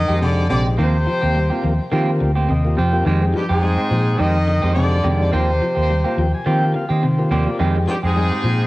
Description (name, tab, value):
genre	afrobeat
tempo	106 BPM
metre	4/4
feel	swing 55% on 16ths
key	F dorian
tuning	A4 = 438 Hz
part	bright horn section	melody	0.0-8.7 s	G4 to Eb5	-23 LUFS	equal	cassette tape
part	bright baritone saxophone	second line	0.0-8.7 s	G2 to Eb3	-27 LUFS	left 2 dB	cassette tape
part	electric guitar at the edge of break-up	arpeggios	0.0-8.7 s	C3 to G3	-26 LUFS	left 2 dB	wide subtle chorus, cassette tape, tape echo
part	fingered electric bass	bass	0.0-8.7 s	Bb1 to Eb3	-18 LUFS	equal	none
part	combo organ	accompaniment	0.1-8.7 s	Ab3 to Ab5	-25 LUFS	left 2 dB	cassette tape
part	semi-hollow electric guitar	stabs	0.1-8.5 s	Eb3 to G4	-24 LUFS	right 3 dB	cassette tape, tape echo
room	light reverb, small room ambience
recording	home recording on cassette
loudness	-16 LUFS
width	side -19 dB against mid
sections	0.0-8.7 A section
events	transistor combo organ fill 2.2-3.0, 5.9-7.6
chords	0.0 Fm9; 0.8 Eb69; 3.0 Fm9; 5.3 Eb69; 7.6 Fm9